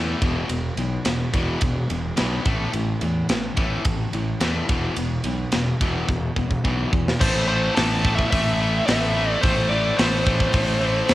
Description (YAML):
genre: hard rock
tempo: 108 BPM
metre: 4/4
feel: straight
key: A minor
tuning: A4 = 440 Hz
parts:
  - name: cranked stack guitar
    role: riff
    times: 0.0-11.1 s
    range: E2 to A3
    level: -27 LUFS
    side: left 5 dB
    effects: overdrive, spring reverb
  - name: high-gain distorted guitar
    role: riff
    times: 0.0-11.1 s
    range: E2 to A3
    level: -30 LUFS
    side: right 6 dB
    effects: distortion
  - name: fuzz fingered electric bass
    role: bass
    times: 0.0-11.1 s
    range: E1 to E2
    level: -25 LUFS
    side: equal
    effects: overdrive
  - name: tight metal drum kit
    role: drums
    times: 0.2-11.1 s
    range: crash cymbal, hi-hat, kick drum, ride cymbal, snare drum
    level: -24 LUFS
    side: equal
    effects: cassette tape
  - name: smooth overdriven lead guitar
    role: melody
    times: 7.2-11.1 s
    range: C5 to A5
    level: -24 LUFS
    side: equal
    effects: cassette tape
  - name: heavy high-gain guitar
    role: riff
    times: 7.2-11.1 s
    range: A2 to A3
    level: -29 LUFS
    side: right 1 dB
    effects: distortion
room: light reverb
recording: home recording on cassette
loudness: -19 LUFS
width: side -15 dB against mid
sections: 0.0-7.2 A section; 7.2-11.1 B section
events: drum fill 6.1-7.2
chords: 0.2 E5; 2.5 A5; 4.7 E5; 7.2 Am